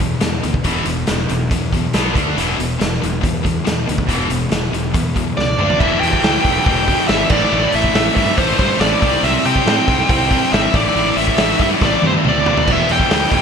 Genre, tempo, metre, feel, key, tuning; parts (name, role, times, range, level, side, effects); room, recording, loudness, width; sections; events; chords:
hard rock; 140 BPM; 4/4; straight; E minor; A4 = 439 Hz
cranked stack guitar; riff; 0.0-13.4 s; E2 to D4; -23 LUFS; right 11 dB; overdrive
heavy high-gain guitar; riff; 0.0-13.4 s; E2 to D4; -20 LUFS; left 10 dB; distortion
fuzz fingered electric bass; bass; 0.0-13.4 s; E1 to C3; -23 LUFS; right 1 dB; overdrive
raw garage drum kit; drums; 0.0-13.4 s; crash cymbal, hi-hat, kick drum, snare drum, toms; -18 LUFS; equal; gated reverb
bluesy overdriven lead guitar; melody; 5.4-13.4 s; C5 to G5; -18 LUFS; right 1 dB; distortion
raw garage guitar; riff; 5.8-13.4 s; A2 to E4; -24 LUFS; left 1 dB; overdrive, analog chorus
light reverb, small room ambience; bright 1980s-style digital production; -13 LUFS; side -6 dB against mid
0.0-5.8 A section; 5.8-13.4 B section
drum fill 5.4-5.8, 11.8-12.7
0.0 E5; 1.9 B5; 2.2 D5; 2.4 E5; 5.6 D5; 5.8 Em; 7.3 Am; 9.0 C; 10.7 Am; 12.7 Em